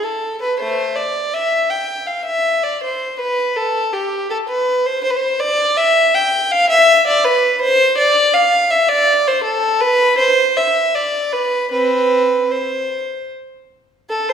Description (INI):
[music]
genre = classical, baroque-style suite movement for unaccompanied violin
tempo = 81 BPM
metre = 3/4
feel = rubato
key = A minor, C major from 5.0 s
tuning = A4 = 441 Hz
[part]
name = rich violin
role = solo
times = 0.0-14.3 s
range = A3 to G5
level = -14 LUFS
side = equal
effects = none
[sound]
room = wet recital hall reverb, RT60 1.4 s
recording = heard from further back in the room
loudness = -14 LUFS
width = side -8 dB against mid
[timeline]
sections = 0.0-14.1 A section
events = none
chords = none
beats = | 0.57 1.32 2.08 | 2.82 3.56 4.29 | 5.04 5.78 6.52 | 7.25 7.98 8.71 | 9.45 10.19 10.94 | 11.72 12.50 13.29 | 14.09